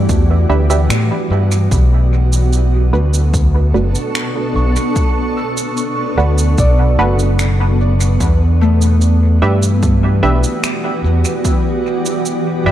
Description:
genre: ambient dub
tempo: 74 BPM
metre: 4/4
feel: straight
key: B minor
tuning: A4 = 440 Hz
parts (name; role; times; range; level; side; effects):
- granular cloud pad; sustained chords; 0.0-12.7 s; B2 to C#6; -19 LUFS; right 1 dB; built-in reverb
- Celtic harp; arpeggios; 0.0-12.4 s; A3 to E6; -24 LUFS; left 2 dB; tape echo
- overdriven fingered electric bass; bass; 0.0-12.7 s; F#1 to A2; -12 LUFS; equal; none
- electronic kick drum; drums; 0.1-11.6 s; none; -16 LUFS; equal; overdrive
- electronic shaker and finger snaps; drums; 0.1-12.4 s; none; -25 LUFS; right 2 dB; dub echo
- filtered dub chord stab; stabs; 0.5-12.7 s; A3 to E5; -21 LUFS; right 3 dB; chorus, dub echo
room: light reverb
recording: none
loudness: -12 LUFS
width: side -12 dB against mid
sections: 0.0-12.7 A section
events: filter sweep on synth stab 0.0-12.7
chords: 0.0 Em7; 1.7 Bm7; 8.2 Em7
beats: 0.10 0.91 | 1.72 2.53 3.34 4.15 | 4.96 5.77 6.58 7.39 | 8.20 9.01 9.82 10.64 | 11.45 12.26

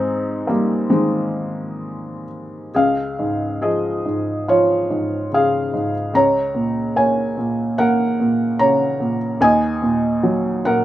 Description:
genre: classical, lyrical solo piano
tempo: 63-74 BPM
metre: 4/4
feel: rubato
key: Db major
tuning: A4 = 440 Hz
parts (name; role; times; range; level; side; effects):
- felt-muted upright piano; solo; 0.0-10.8 s; Db2 to Bb5; -17 LUFS; equal; none
room: light reverb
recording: none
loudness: -16 LUFS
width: side -13 dB against mid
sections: 0.0-2.7 A section; 2.7-10.8 B section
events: none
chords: 0.0 Ab; 2.7 Db; 6.1 Gb/Db; 9.4 Ebm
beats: 0.06 0.91 1.81 | 2.73 3.61 4.47 5.31 | 6.14 6.96 7.78 8.60 | 9.41 10.23

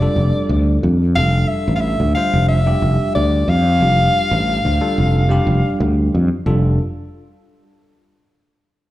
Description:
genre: electric jazz fusion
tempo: 90 BPM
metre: 4/4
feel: straight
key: F major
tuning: A4 = 439 Hz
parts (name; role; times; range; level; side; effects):
- warm soprano saxophone; melody; 0.0-5.8 s; D5 to F5; -20 LUFS; left 2 dB; slapback echo
- bell-like tine electric piano; accompaniment; 0.0-6.8 s; G3 to C5; -23 LUFS; right 1 dB; medium stereo tremolo, slapback echo
- fretless electric bass; bass; 0.0-6.8 s; F1 to F2; -15 LUFS; equal; none
room: small room ambience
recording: live gig heard through the venue's PA, club reverb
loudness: -14 LUFS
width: side -15 dB against mid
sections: 0.0-6.5 A section; 6.5-8.9 B section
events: none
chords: 0.0 F69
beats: 0.50 | 1.16 1.82 2.49 3.15 | 3.81 4.48 5.14 5.81 | 6.47

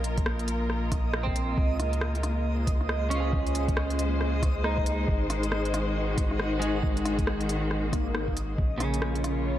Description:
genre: future garage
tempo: 137 BPM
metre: 4/4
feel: swing 61% on 16ths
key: unclear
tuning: A4 = 440 Hz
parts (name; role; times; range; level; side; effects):
- twelve-string electric guitar; accompaniment; 0.0-9.6 s; Db3 to Ab4; -34 LUFS; right 2 dB; wide subtle chorus, sidechain pumping, tape echo
- rich studio string section; sustained chords; 0.0-9.6 s; Bb2 to Db5; -32 LUFS; left 2 dB; sidechain pumping
- soft dub sub bass; bass; 0.0-9.6 s; Ab1 to Db2; -30 LUFS; equal; sidechain pumping
- organic electronic drum kit; drums; 0.0-9.4 s; hi-hat, rim click; -34 LUFS; equal; none
- backwards swelling texture; texture; 0.0-9.6 s; Eb5 to F5; -38 LUFS; right 3 dB; built-in reverb
- electronic kick drum; drums; 0.2-8.7 s; none; -28 LUFS; equal; none
- swell; sound effects; 7.8-8.6 s; none; -36 LUFS; left 4 dB; none
room: light reverb, digital ambience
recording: none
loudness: -25 LUFS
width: side -12 dB against mid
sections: 0.0-9.6 A section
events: swell 7.8-8.6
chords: 0.0 Bb5; 1.6 Dbmaj7; 5.1 Ab7; 8.6 Bbm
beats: 0.27 0.70 1.14 | 1.58 2.02 2.46 2.89 | 3.33 3.77 4.21 4.65 | 5.08 5.52 5.96 6.40 | 6.84 7.27 7.71 8.15 | 8.59 9.03 9.46

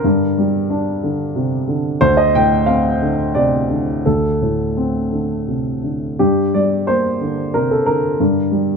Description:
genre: neoclassical minimalist piano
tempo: 82-93 BPM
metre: 3/4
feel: rubato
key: G minor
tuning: A4 = 440 Hz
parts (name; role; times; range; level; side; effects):
- dark upright piano; solo; 0.0-8.8 s; D2 to G5; -15 LUFS; equal; none
room: light reverb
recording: close, detailed microphones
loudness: -15 LUFS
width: side -5 dB against mid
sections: 0.0-8.8 A section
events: none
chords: 0.0 Gm; 2.0 Dm7; 6.2 Gm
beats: | 0.04 0.70 1.35 | 2.01 2.67 3.35 | 4.04 4.75 5.47 | 6.20 6.88 7.55 | 8.20

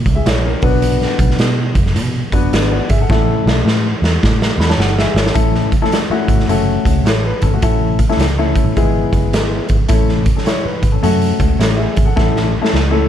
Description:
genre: uptempo 1960s-style soul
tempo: 106 BPM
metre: 4/4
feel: swing 65% on 8ths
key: A major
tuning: A4 = 440 Hz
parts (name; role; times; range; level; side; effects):
- vintage muted picked electric bass; bass; 0.0-13.1 s; F#1 to B2; -17 LUFS; right 1 dB; none
- raw garage drum kit; drums; 0.1-12.9 s; hi-hat, kick drum, snare drum; -16 LUFS; right 1 dB; none
- warm upright piano; accompaniment; 0.2-13.1 s; G#3 to B5; -18 LUFS; left 4 dB; none
room: light reverb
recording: dark, warm production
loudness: -12 LUFS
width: side -10 dB against mid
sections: 0.0-5.4 A section; 5.4-13.1 B section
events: drum fill 3.1-5.4, 12.2-13.1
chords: 0.0 F#7 (rootless); 0.5 Bm; 3.1 A; 6.5 F#m; 7.6 A; 8.8 E; 9.9 A; 11.0 F#m; 12.2 A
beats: 0.26 | 0.83 1.40 1.96 2.53 | 3.09 3.66 4.22 4.79 | 5.36 5.92 6.49 7.06 | 7.63 8.19 8.76 9.33 | 9.89 10.46 11.03 11.60 | 12.16 12.73

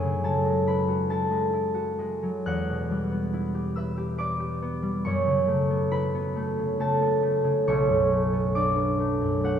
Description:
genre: classical, solo harp piece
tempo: 62-73 BPM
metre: 3/4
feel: rubato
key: E dorian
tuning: A4 = 440 Hz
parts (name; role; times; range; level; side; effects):
- concert harp; solo; 0.0-9.6 s; B1 to F#6; -23 LUFS; equal; none
room: wet church reverb, RT60 2.9 s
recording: none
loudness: -23 LUFS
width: side -8 dB against mid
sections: 0.0-9.6 A section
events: none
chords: 0.0 F#m9; 2.5 Emadd9; 5.0 F#m7; 7.7 Bm9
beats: 0.68 1.54 | 2.47 3.33 4.18 | 5.03 5.90 6.79 | 7.66 8.54 9.43

